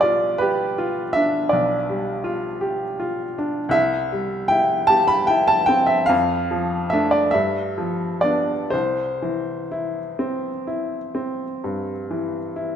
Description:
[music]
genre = classical, romantic nocturne for solo piano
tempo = 40-56 BPM (dotted quarters)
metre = 12/8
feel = rubato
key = C major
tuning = A4 = 440 Hz
[part]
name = clear upright piano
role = solo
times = 0.0-12.8 s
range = B1 to B5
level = -19 LUFS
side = equal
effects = none
[sound]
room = moderate scoring stage reverb, RT60 1.8 s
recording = minimal, uncompressed stereo recording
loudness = -19 LUFS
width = side -8 dB against mid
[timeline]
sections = 0.0-12.8 A section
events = none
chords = 0.0 G7/B; 3.7 C; 6.1 Dm/F; 7.3 G7; 8.7 C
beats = 0.41 1.53 2.62 | 3.74 4.89 6.08 7.34 | 8.72 10.19 11.63

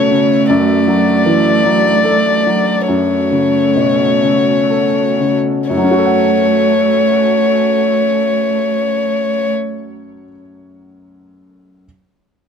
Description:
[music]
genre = neoclassical piano and strings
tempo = 39-54 BPM (dotted quarters)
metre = 6/8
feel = rubato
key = F# minor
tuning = A4 = 442 Hz
[part]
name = dark violin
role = melody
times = 0.0-9.5 s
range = C#5 to D5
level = -15 LUFS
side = left 6 dB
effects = none
[part]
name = warm cello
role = second line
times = 0.0-9.5 s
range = A3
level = -17 LUFS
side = right 10 dB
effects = none
[part]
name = bright upright piano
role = accompaniment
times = 0.0-11.9 s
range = F#2 to F#5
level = -17 LUFS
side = left 1 dB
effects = none
[part]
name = warbly tape-like pad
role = sustained chords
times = 0.0-9.5 s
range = C#4 to A4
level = -24 LUFS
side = right 1 dB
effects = chorus, built-in reverb
[sound]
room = little or no reverb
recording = close, detailed microphones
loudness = -11 LUFS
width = side -7 dB against mid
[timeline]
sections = 0.0-5.7 A section; 5.7-8.8 B section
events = slowing down 0.0-5.7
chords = 0.5 D/F#; 2.9 F#m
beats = | 0.49 1.65 | 2.88 4.22 | 5.70 7.24

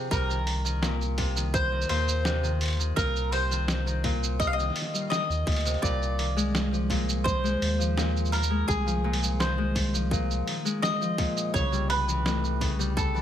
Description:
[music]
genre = folktronica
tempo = 84 BPM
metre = 4/4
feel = straight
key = C minor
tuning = A4 = 439 Hz
[part]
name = mandolin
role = melody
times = 0.0-13.2 s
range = Ab4 to F5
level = -30 LUFS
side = equal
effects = ping-pong delay
[part]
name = Celtic harp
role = arpeggios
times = 0.0-13.2 s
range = A2 to Ab3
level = -30 LUFS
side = left 2 dB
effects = ping-pong delay
[part]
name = warm sub bass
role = bass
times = 0.1-13.2 s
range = C2 to Eb2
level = -28 LUFS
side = equal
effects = none
[part]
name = electronic kick drum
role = drums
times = 0.1-13.1 s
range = none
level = -29 LUFS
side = equal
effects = none
[part]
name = lo-fi sampler-style drum kit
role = drums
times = 0.1-13.2 s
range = cabasa, hi-hat, snare drum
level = -32 LUFS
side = right 2 dB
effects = overdrive
[sound]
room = light reverb, digital ambience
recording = none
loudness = -24 LUFS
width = side -10 dB against mid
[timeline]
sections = 0.0-13.2 A section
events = none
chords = 0.1 Cm7; 5.8 Bb7sus4/C; 11.5 A7/C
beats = | 0.11 0.83 1.54 2.26 | 2.97 3.69 4.40 5.11 | 5.83 6.54 7.26 7.97 | 8.69 9.40 10.11 10.83 | 11.54 12.26 12.97

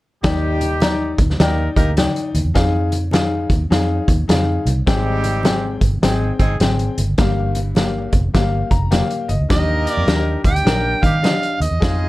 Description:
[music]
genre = uptempo 1960s-style soul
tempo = 104 BPM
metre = 4/4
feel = swing 64% on 8ths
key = Eb major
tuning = A4 = 441 Hz
[part]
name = warm horn section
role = second line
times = 0.2-12.1 s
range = G3 to Bb4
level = -24 LUFS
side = equal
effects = none
[part]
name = clear upright piano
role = accompaniment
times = 0.2-12.1 s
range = G2 to Bb5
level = -22 LUFS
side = left 4 dB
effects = none
[part]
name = vintage muted fingered electric bass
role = bass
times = 0.2-12.1 s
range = F1 to Eb3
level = -20 LUFS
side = equal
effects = tube saturation
[part]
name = vintage drum kit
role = drums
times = 0.2-12.0 s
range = hi-hat, kick drum, snare drum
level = -19 LUFS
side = equal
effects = none
[part]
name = congas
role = percussion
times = 0.2-9.4 s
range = none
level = -30 LUFS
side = right 1 dB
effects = none
[part]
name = overdriven harmonica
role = melody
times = 9.5-12.1 s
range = Eb5 to G5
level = -21 LUFS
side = right 3 dB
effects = none
[sound]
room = little or no reverb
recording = dark, warm production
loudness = -15 LUFS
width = side -18 dB against mid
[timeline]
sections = 0.2-9.5 A section; 9.5-12.1 B section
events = upright piano fill 8.3-9.5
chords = 0.2 Ebmaj7; 2.6 Fm7; 4.9 Abmaj7; 7.2 Gm7; 9.5 Ebmaj7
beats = | 0.24 0.82 1.40 1.98 | 2.56 3.14 3.71 4.29 | 4.87 5.45 6.03 6.61 | 7.19 7.77 8.35 8.93 | 9.51 10.09 10.66 11.24 | 11.82

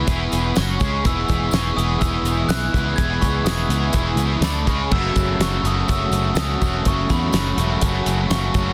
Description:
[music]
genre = indie rock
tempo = 124 BPM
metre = 4/4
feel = straight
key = E major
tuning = A4 = 440 Hz
[part]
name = glockenspiel with hard plastic mallets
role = melody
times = 0.0-8.7 s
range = B5 to G#6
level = -29 LUFS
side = equal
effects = slapback echo
[part]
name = combo organ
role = sustained chords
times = 0.0-8.7 s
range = F#4 to D6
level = -37 LUFS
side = equal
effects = none
[part]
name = crunchy overdriven guitar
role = riff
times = 0.0-8.7 s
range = C#3 to C#5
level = -28 LUFS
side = equal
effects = harmonic tremolo
[part]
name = distorted electric guitar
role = riff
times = 0.0-8.7 s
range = F#2 to C#5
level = -29 LUFS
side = equal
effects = overdrive, lush chorus, slapback echo
[part]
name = fingered electric bass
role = bass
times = 0.0-8.7 s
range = E1 to E2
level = -25 LUFS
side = equal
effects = none
[part]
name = cloth-damped thuddy drum kit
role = drums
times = 0.1-8.7 s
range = crash cymbal, hi-hat, kick drum, snare drum, tambourine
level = -25 LUFS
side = equal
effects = none
[part]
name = tambourine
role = percussion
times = 0.1-8.7 s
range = none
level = -41 LUFS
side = equal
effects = none
[sound]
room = small room reverb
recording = dense, heavily limited modern master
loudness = -20 LUFS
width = mono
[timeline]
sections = 0.0-8.7 A section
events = none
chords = 0.0 E; 0.6 F#5; 0.8 C#5; 1.0 Emaj7; 4.4 D5; 4.7 C#5; 4.9 F#m7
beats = 0.08 0.56 | 1.05 1.53 2.02 2.50 | 2.98 3.47 3.95 4.44 | 4.92 5.41 5.89 6.37 | 6.86 7.34 7.83 8.31

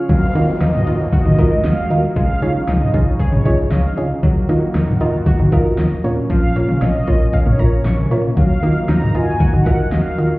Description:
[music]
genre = synth-pop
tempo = 116 BPM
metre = 4/4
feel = straight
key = Eb minor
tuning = A4 = 440 Hz
[part]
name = soft round pluck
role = accompaniment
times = 0.0-10.4 s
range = Bb3 to F5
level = -23 LUFS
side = right 1 dB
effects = chorus
[part]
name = chorused pulse-width pad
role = sustained chords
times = 0.0-10.4 s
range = Db3 to Gb4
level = -26 LUFS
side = equal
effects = none
[part]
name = mellow synth brass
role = melody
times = 0.1-10.3 s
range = Db5 to Bb5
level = -24 LUFS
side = right 1 dB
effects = chorus, digital delay
[part]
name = analog pluck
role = arpeggios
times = 0.1-10.1 s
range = F3 to Db6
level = -25 LUFS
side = left 1 dB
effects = chorus, digital delay
[part]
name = solid FM bass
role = bass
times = 0.1-10.3 s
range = Bb1 to Eb3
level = -17 LUFS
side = equal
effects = none
[part]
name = pop drum kit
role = drums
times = 0.1-10.3 s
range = cowbell, hi-hat, kick drum, snare drum, toms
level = -17 LUFS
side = equal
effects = overdrive
[part]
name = downlifter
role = sound effects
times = 0.1-4.2 s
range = none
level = -29 LUFS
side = right 1 dB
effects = none
[sound]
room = light reverb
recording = heard muffled through a wall, club reverb, EQ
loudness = -13 LUFS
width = side -20 dB against mid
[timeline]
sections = 0.1-10.4 A section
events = none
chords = 0.1 Ebmadd9; 2.2 Dbadd9; 4.2 Ebmadd9; 6.0 Bbm; 8.4 Ebmadd9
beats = | 0.09 0.61 1.13 1.65 | 2.16 2.68 3.20 3.71 | 4.23 4.75 5.27 5.78 | 6.30 6.82 7.33 7.85 | 8.37 8.89 9.40 9.92

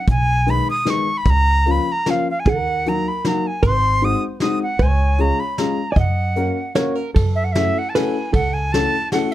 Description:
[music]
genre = musette waltz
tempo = 153 BPM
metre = 3/4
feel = rubato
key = F# major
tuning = A4 = 439 Hz
[part]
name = bright reedy jazz flute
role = melody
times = 0.0-9.3 s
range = E5 to D#6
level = -21 LUFS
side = right 1 dB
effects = none
[part]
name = upright bass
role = bass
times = 0.1-8.8 s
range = G#1 to F#2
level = -19 LUFS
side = equal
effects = none
[part]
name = soft brush drum kit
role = drums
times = 0.1-9.3 s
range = hi-hat, kick drum, ride cymbal, snare drum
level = -21 LUFS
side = equal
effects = none
[part]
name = clear upright piano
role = accompaniment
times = 0.5-9.3 s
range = D#3 to A#4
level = -22 LUFS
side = left 4 dB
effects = none
[part]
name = hollow-body jazz guitar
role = second line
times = 2.5-9.3 s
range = A4 to D#5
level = -25 LUFS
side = right 4 dB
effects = none
[sound]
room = light reverb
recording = dark, warm production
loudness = -16 LUFS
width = side -13 dB against mid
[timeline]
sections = 0.0-7.2 A section; 7.2-9.3 B section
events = none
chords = 0.1 G#m/B; 1.3 A#m/C#; 2.5 D#m; 3.6 G#7; 4.8 C#; 6.0 F#; 7.2 F#m7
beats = | 0.08 0.47 0.86 | 1.26 1.65 2.06 | 2.46 2.85 3.25 | 3.63 4.02 4.41 | 4.79 5.18 5.57 | 5.96 6.36 6.76 | 7.16 7.56 7.95 | 8.34 8.73 9.12

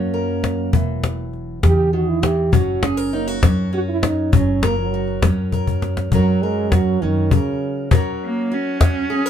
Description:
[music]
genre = acoustic folk duo or small band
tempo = 67 BPM (dotted quarters)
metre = 6/8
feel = straight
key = unclear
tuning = A4 = 442 Hz
[part]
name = dark French horn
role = second line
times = 0.0-7.9 s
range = C#3 to G4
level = -22 LUFS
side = right 5 dB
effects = none
[part]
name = fingerpicked steel-string acoustic guitar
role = accompaniment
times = 0.0-9.3 s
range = C#3 to A#4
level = -25 LUFS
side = left 3 dB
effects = none
[part]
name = upright bass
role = bass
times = 0.0-7.3 s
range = E1 to F#2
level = -22 LUFS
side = equal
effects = none
[part]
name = cajon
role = percussion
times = 0.4-8.9 s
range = none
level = -17 LUFS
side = left 2 dB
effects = none
[part]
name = warm cello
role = melody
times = 8.2-9.3 s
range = A#3 to C#4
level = -21 LUFS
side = right 2 dB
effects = none
[sound]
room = light reverb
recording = minimal, uncompressed stereo recording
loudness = -16 LUFS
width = side -9 dB against mid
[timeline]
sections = 0.0-6.1 A section; 6.1-7.9 B section; 7.9-9.3 C section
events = French horn solo 0.0-6.1; drum fill 5.5-6.1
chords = 0.0 F#; 0.7 Esus2; 2.5 F#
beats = | 0.73 1.63 | 2.53 3.43 | 4.33 5.23 | 6.13 7.02 | 7.92 8.82

